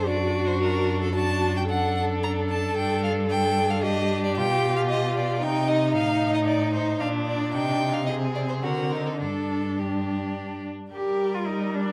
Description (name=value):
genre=quick classical-period movement for string quartet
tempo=112 BPM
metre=3/4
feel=rubato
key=G minor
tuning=A4 = 440 Hz
part: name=clear violin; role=melody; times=0.0-11.9 s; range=G4 to Bb5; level=-32 LUFS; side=equal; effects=none
part: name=rich violin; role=second line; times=0.0-11.9 s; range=D4 to Bb4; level=-33 LUFS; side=equal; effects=none
part: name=warm viola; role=accompaniment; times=0.0-11.9 s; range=G3 to A4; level=-30 LUFS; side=equal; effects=none
part: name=rich cello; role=bass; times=0.0-11.9 s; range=F#2 to G4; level=-30 LUFS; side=equal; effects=none
room=wet recital hall reverb, RT60 1.4 s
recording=none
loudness=-25 LUFS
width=mono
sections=0.0-10.9 A section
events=none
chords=0.0 D/F#; 2.8 G5; 4.4 G7/B; 5.4 Cm; 5.9 Adim; 7.0 Bb; 7.5 Cm; 8.1 Ab/C; 8.6 D7; 9.2 G5; 10.9 Gm